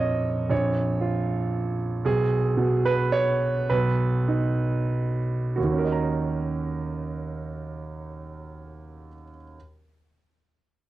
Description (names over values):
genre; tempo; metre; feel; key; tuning
classical; 89-117 BPM; 3/4; rubato; Eb minor; A4 = 440 Hz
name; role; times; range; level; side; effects
bright concert grand piano; accompaniment; 0.0-9.6 s; Bb1 to Bb5; -24 LUFS; right 2 dB; cassette tape
room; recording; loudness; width
moderate small room reverb, RT60 0.6 s; home recording on cassette; -23 LUFS; side -15 dB against mid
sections
0.0-5.6 A section; 5.6-9.5 B section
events
slowing down 1.3-5.6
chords
0.0 Bbm; 2.1 Abm/Cb; 5.6 Ebm7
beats
| 0.51 1.03 1.54 | 2.06 2.58 3.13 | 3.70 4.28 4.90 | 5.57 6.23 6.89 | 7.55 8.21 8.87